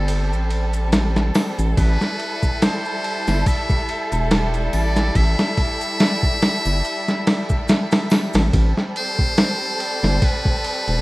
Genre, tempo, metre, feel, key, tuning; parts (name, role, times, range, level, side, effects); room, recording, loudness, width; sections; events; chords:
trip hop; 71 BPM; 4/4; swing 55% on 16ths; A minor; A4 = 440 Hz
trumpet with metal mute; melody; 0.0-11.0 s; A4 to E5; -26 LUFS; equal; tape echo
warm studio violin section; sustained chords; 0.0-11.0 s; G3 to A4; -26 LUFS; equal
round analog bass; bass; 0.0-11.0 s; E1 to A1; -19 LUFS; equal
boom bap sampler-style drum kit; drums; 0.1-11.0 s; kick drum, ride cymbal, snare drum; -20 LUFS; equal; studio reverb
maracas and triangle; percussion; 0.1-8.5 s; -42 LUFS; left 2 dB
light reverb, studio reverb; rough home demo mix, vinyl crackle; -17 LUFS; side -20 dB against mid
0.0-8.5 A section; 8.5-11.0 B section
0.0 Am7; 1.8 C (rootless); 8.5 Am9